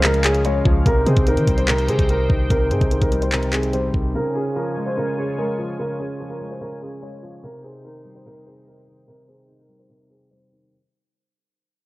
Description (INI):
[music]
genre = hip hop, trap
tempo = 146 BPM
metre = 4/4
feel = half-time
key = C phrygian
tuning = A4 = 440 Hz
[part]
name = dark baby grand piano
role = melody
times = 0.0-10.7 s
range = Ab4 to Db5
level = -24 LUFS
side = equal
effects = low-pass filter
[part]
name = dark grand piano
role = accompaniment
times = 0.0-10.7 s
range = C3 to Db4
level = -25 LUFS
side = equal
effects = low-pass filter
[part]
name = sweeping resonant pad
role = sustained chords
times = 0.0-10.7 s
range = Db4 to Ab5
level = -33 LUFS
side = equal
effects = chorus, low-pass filter
[part]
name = clean 808-style bass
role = bass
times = 0.0-4.1 s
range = C2 to Eb3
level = -22 LUFS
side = equal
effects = none
[part]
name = trap drum kit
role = drums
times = 0.0-4.0 s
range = handclaps, hi-hat, kick drum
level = -21 LUFS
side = equal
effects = none
[sound]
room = light reverb, digital ambience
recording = worn, warbling old tape, cassette tape, warbly pitch drift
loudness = -18 LUFS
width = side -19 dB against mid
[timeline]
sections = 0.0-10.7 A section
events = fade-out 0.0-10.7; filter sweep 0.0-10.7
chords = 0.0 Db; 0.9 Cm; 4.1 Db; 7.4 Cm